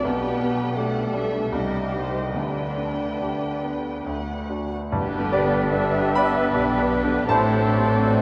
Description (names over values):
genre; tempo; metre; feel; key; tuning
classical, romantic movement for piano and orchestra; 68-89 BPM; 3/4; rubato; G major; A4 = 435 Hz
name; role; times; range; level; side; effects
clear grand piano; melody; 0.0-8.2 s; B1 to B5; -27 LUFS; equal; none
muted chamber violin section; melody; 0.0-8.2 s; F#4 to G5; -38 LUFS; equal; none
muted chamber violin section; second line; 0.0-8.2 s; B3 to B4; -36 LUFS; equal; none
dark bassoon; accompaniment; 0.0-8.2 s; D3 to B3; -33 LUFS; equal; none
muted chamber viola section; accompaniment; 0.0-8.2 s; D4 to E5; -35 LUFS; equal; none
muted chamber cello section; bass; 0.0-8.2 s; G2 to B3; -35 LUFS; equal; none
muted chamber double bass section; bass; 0.1-8.2 s; G1 to D2; -34 LUFS; equal; none
timpani; percussion; 2.3-6.1 s; G2 to D3; -38 LUFS; equal; none
silver concert flute; second line; 4.9-8.2 s; B4 to C5; -33 LUFS; equal; none
warm clarinet; second line; 4.9-8.2 s; D4; -34 LUFS; equal; none
warm oboe; second line; 5.3-8.2 s; D4 to B4; -33 LUFS; equal; none
dark French horn section; sustained chords; 5.3-8.2 s; D3 to B3; -29 LUFS; equal; none
room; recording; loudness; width
wet church reverb, RT60 3.5 s; none; -23 LUFS; mono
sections
0.0-4.9 A section; 4.9-8.2 B section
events
none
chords
0.0 G/B; 1.5 Cm; 2.3 G/D; 4.9 G; 7.3 D7/A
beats
| 0.05 0.76 1.51 | 2.34 3.21 4.07 | 4.92 5.72 6.54 | 7.29 8.03